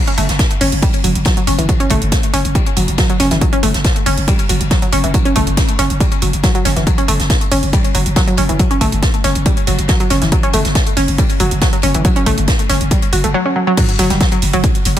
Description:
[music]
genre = driving peak-time techno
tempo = 139 BPM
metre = 4/4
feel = straight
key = F# phrygian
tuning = A4 = 439 Hz
[part]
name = wide unison pluck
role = riff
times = 0.1-15.0 s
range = E3 to F#4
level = -17 LUFS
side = equal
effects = sidechain pumping, ping-pong delay
[part]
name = techno drum kit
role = drums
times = 0.1-15.0 s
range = crash cymbal, hi-hat, toms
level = -22 LUFS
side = right 3 dB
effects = sidechain pumping on hats, sidechain pumping on cymbals, sidechain pumping on toms
[part]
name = growling 808-style bass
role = bass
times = 0.2-15.0 s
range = F#1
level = -19 LUFS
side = equal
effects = tube saturation, sidechain pumping, low-pass filter
[part]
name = unplugged drum kit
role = drums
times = 0.2-15.0 s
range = hi-hat, ride cymbal, snare drum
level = -24 LUFS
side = left 1 dB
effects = high-pass filter on cymbals, high-pass filter on hats, high-pass filter on snare, high-pass filter on room
[part]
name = electronic kick drum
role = drums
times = 0.4-14.7 s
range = none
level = -15 LUFS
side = equal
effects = none
[sound]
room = small room ambience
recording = none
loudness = -12 LUFS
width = side -11 dB against mid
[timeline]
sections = 0.0-13.8 A section; 13.8-15.0 B section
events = drop 13.8-15.0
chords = 0.0 F#5; 13.8 N.C.

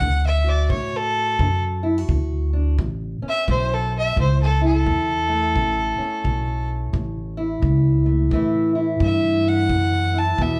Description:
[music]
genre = acoustic country blues, solo or duo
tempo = 87 BPM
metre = 4/4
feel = swing 62% on 8ths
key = A major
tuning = A4 = 438 Hz
[part]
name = warm fiddle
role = melody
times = 0.0-10.6 s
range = A4 to A5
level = -25 LUFS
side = equal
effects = plate reverb
[part]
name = fingerpicked steel-string acoustic guitar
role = accompaniment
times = 0.0-10.6 s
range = A2 to F#4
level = -26 LUFS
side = equal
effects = none
[part]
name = upright bass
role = bass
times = 0.0-10.6 s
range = A1 to A2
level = -24 LUFS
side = equal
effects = none
[part]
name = kick drum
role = drums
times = 0.0-10.6 s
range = none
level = -30 LUFS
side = equal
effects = none
[sound]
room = moderate studio reverb, RT60 0.6 s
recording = heard from further back in the room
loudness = -21 LUFS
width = mono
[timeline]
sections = 0.0-8.3 A section; 8.3-10.6 B section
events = fiddle solo 8.3-10.6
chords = 0.0 D; 2.8 A; 8.3 A5

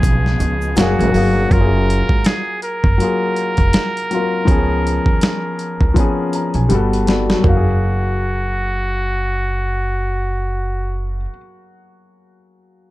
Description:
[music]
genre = lo-fi hip hop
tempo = 81 BPM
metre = 4/4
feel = swing 58% on 16ths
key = F# major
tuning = A4 = 440 Hz
[part]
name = trumpet with metal mute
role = melody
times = 0.0-11.2 s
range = F#4 to A#4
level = -23 LUFS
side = right 1 dB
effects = low-pass filter, plate reverb
[part]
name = felt-muted upright piano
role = accompaniment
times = 0.0-12.9 s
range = E#3 to A#5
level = -20 LUFS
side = left 3 dB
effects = low-pass filter, plate reverb
[part]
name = warm studio string section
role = sustained chords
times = 0.0-1.5 s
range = C#3 to E#5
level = -26 LUFS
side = right 2 dB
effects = low-pass filter
[part]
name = upright bass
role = bass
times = 0.0-11.2 s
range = E#1 to D#2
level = -19 LUFS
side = equal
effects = none
[part]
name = dusty soul sampler-style drum kit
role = drums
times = 0.0-7.6 s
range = hi-hat, kick drum, snare drum, toms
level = -16 LUFS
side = equal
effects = overdrive
[part]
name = egg shaker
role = percussion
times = 0.0-1.3 s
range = none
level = -40 LUFS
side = right 7 dB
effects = none
[sound]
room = light reverb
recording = dark, warm production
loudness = -15 LUFS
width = side -17 dB against mid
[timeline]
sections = 0.0-1.5 A section; 1.5-7.4 B section; 7.4-10.4 C section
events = felt piano fill 6.0-7.4; drum fill 6.7-7.4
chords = 0.0 C#7; 0.8 F#maj9; 4.5 C#7; 6.7 Gmaj9; 7.4 F#maj9

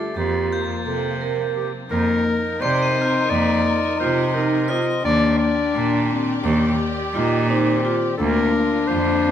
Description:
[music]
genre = contemporary instrumental, chamber music in an uneven meter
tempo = 172 BPM (eighths)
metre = 9/8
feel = straight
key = unclear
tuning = A4 = 438 Hz
[part]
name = clear clarinet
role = melody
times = 0.0-9.3 s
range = F4 to Eb5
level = -24 LUFS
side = left 1 dB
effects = none
[part]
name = warm French horn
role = second line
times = 0.0-9.3 s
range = A3 to Eb4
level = -25 LUFS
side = left 4 dB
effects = none
[part]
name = rich studio string section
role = sustained chords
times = 0.0-9.3 s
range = D3 to D5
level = -30 LUFS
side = left 2 dB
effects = none
[part]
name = crotales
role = texture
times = 0.0-5.4 s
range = C6 to Eb7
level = -31 LUFS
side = left 3 dB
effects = none
[part]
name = vibraphone with medium hard mallets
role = arpeggios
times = 0.2-9.3 s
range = Bb3 to D5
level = -23 LUFS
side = equal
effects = none
[part]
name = clear cello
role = bass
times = 0.2-9.3 s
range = D2 to C3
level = -24 LUFS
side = right 3 dB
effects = none
[sound]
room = light reverb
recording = none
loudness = -18 LUFS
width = side -9 dB against mid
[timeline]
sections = 0.0-1.9 A section; 1.9-9.3 B section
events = none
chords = 0.2 Fsus4; 1.9 F7sus4; 5.1 Ebmaj7; 8.2 Bbadd9/D

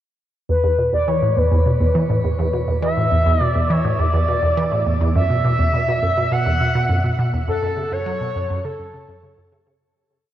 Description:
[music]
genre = ambient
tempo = 103 BPM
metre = 4/4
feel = straight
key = unclear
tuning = A4 = 439 Hz
[part]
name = expressive synth lead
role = melody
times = 0.5-9.5 s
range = A4 to F#5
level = -21 LUFS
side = left 1 dB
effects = wide subtle chorus, shimmer reverb, tape echo
[part]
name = resonant blip pluck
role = riff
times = 0.5-9.7 s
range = E2 to F#3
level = -18 LUFS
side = right 1 dB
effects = phaser, tape echo
[sound]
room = wet huge ambient reverb, RT60 7.5 s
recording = none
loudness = -16 LUFS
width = side -12 dB against mid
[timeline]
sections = 0.5-9.8 A section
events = fade-out 6.7-9.8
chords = 0.5 E5; 5.2 B5; 7.5 F#m

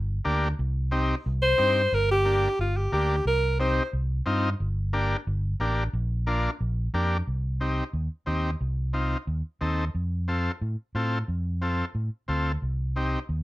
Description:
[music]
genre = latin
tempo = 179 BPM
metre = 4/4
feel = straight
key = C dorian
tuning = A4 = 441 Hz
[part]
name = fingered electric bass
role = bass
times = 0.0-13.4 s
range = G1 to A2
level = -26 LUFS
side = equal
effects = none
[part]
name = combo organ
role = accompaniment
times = 0.2-13.2 s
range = Bb3 to A4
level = -28 LUFS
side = left 1 dB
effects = none
[part]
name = bright alto saxophone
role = melody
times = 1.4-3.9 s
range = F4 to C5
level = -23 LUFS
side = equal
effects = none
[sound]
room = light reverb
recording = rough home demo mix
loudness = -24 LUFS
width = side -17 dB against mid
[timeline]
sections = 0.0-7.3 A section; 7.3-13.4 B section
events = none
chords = 0.0 Gm; 0.6 Cm; 1.9 Gm; 3.3 Cm7; 4.6 Gm; 5.9 Bb; 7.3 Cm; 9.9 F; 12.6 Cm

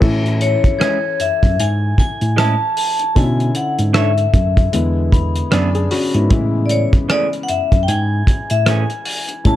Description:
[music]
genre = lush 1970s-style soul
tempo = 76 BPM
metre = 4/4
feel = swing 58% on 16ths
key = A major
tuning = A4 = 439 Hz
[part]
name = warm baby grand piano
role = accompaniment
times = 0.0-9.6 s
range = C#3 to B5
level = -23 LUFS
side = left 3 dB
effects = none
[part]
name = tine electric piano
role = bass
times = 0.0-9.6 s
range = E2 to B2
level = -18 LUFS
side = equal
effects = none
[part]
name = cloth-damped thuddy drum kit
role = drums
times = 0.0-9.6 s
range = crash cymbal, hi-hat, kick drum, rim click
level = -16 LUFS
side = equal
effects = none
[part]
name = vibraphone with hard mallets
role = melody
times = 0.4-9.6 s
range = C#5 to A5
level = -20 LUFS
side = left 3 dB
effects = none
[part]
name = electric guitar through a small old amp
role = riff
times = 0.8-8.8 s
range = E3 to C#5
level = -23 LUFS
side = right 7 dB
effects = none
[part]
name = glockenspiel with soft plastic mallets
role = texture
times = 0.8-9.6 s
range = B5 to G#6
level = -31 LUFS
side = right 2 dB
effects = stereo widening
[sound]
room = small room ambience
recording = dark, warm production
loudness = -14 LUFS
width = side -13 dB against mid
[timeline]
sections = 0.0-9.6 A section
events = grand piano fill 5.1-6.3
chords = 0.0 Amaj7; 3.2 Bm11; 4.7 E7; 6.3 Amaj7

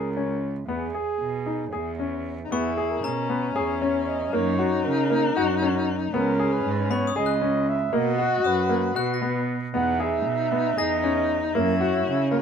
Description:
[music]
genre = contemporary instrumental, chamber music in an uneven meter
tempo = 233 BPM (eighths)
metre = 7/8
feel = straight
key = E lydian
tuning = A4 = 440 Hz
[part]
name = mellow flugelhorn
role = melody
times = 0.0-12.4 s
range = F#4 to F#5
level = -28 LUFS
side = right 4 dB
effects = none
[part]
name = clear grand piano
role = arpeggios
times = 0.0-12.4 s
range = A#3 to G#4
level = -27 LUFS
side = left 3 dB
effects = none
[part]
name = warm cello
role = bass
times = 0.0-12.4 s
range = C#2 to C#3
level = -28 LUFS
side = right 4 dB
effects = none
[part]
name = warm alto saxophone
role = second line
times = 2.4-12.4 s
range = C#4 to F#4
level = -27 LUFS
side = left 6 dB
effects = none
[part]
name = glockenspiel with brass mallets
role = texture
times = 2.5-3.7, 6.9-11.4 s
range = A#5 to A#6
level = -35 LUFS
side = left 4 dB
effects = none
[sound]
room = light reverb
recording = minimal, uncompressed stereo recording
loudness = -22 LUFS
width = side -7 dB against mid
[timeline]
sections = 0.0-2.5 A section; 2.5-12.4 B section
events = none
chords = 0.0 N.C.; 0.7 E; 2.5 E6; 4.3 F#; 6.1 C#5; 7.9 Bmaj7; 9.7 E6; 11.5 F#7

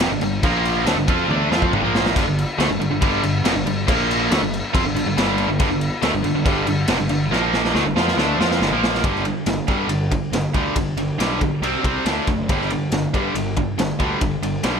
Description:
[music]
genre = hard rock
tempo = 139 BPM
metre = 4/4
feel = straight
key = G minor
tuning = A4 = 439 Hz
[part]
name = overdriven electric guitar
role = riff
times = 0.0-14.8 s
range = F2 to F4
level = -24 LUFS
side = left 11 dB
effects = none
[part]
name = overdriven electric guitar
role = riff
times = 0.0-14.8 s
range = F2 to F4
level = -22 LUFS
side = right 10 dB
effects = none
[part]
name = fuzz picked electric bass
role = bass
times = 0.0-14.8 s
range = F1 to G2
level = -26 LUFS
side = equal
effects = overdrive
[part]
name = raw garage drum kit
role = drums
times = 0.0-14.7 s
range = crash cymbal, kick drum, ride cymbal, snare drum, splash cymbal, toms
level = -22 LUFS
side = equal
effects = none
[sound]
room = light reverb, small room ambience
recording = none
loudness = -17 LUFS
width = side -6 dB against mid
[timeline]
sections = 0.0-9.0 A section; 9.0-14.8 B section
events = drum fill 1.3-2.2, 7.3-9.0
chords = 0.4 Bb5; 0.9 Gm; 3.9 Bb5; 4.3 G5; 7.3 Bb5; 7.7 Gm; 9.0 G5; 11.6 C5; 12.1 D5; 12.5 G5

